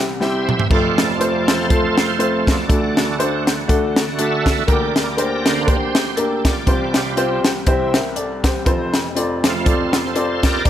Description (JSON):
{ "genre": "uptempo gospel", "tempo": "121 BPM", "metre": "4/4", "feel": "swing 56% on 8ths", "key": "F major", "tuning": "A4 = 440 Hz", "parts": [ { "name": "warm upright piano", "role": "accompaniment", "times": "0.0-10.7 s", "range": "F1 to E5", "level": "-20 LUFS", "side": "left 2 dB", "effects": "none" }, { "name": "bright tonewheel organ", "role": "sustained chords", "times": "0.2-10.7 s", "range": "C3 to E5", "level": "-21 LUFS", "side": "right 4 dB", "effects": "slow rotary speaker, overdrive, chorus vibrato" }, { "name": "crisp fusion drum kit", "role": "drums", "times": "0.2-10.7 s", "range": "hi-hat, kick drum, snare drum, splash cymbal, toms", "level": "-18 LUFS", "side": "equal", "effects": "none" } ], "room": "light reverb, small room ambience", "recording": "none", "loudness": "-15 LUFS", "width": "side -11 dB against mid", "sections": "0.0-10.7 A section", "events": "tonewheel organ solo 0.0-10.7; drum fill 0.2-0.7", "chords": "0.0 C; 0.7 F; 2.7 D; 4.7 Gm/D; 6.7 Csus4; 7.7 C; 8.7 F" }